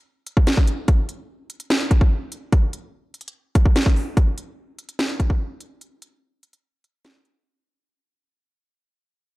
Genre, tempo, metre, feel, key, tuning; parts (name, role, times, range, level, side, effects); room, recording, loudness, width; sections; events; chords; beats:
hip hop; 146 BPM; 4/4; half-time
drill drum kit; drums; 0.3-7.3 s; hi-hat, kick drum, snare drum; -17 LUFS; equal
light reverb; dark, warm production; -18 LUFS; side -20 dB against mid
0.0-4.2 A section; 4.2-7.5 B section
fade-out 4.2-7.5
0.06 0.47 | 0.88 1.29 1.70 2.11 | 2.52 2.94 3.35 3.76 | 4.17 4.58 4.99 5.40 | 5.81 6.22 6.63 7.05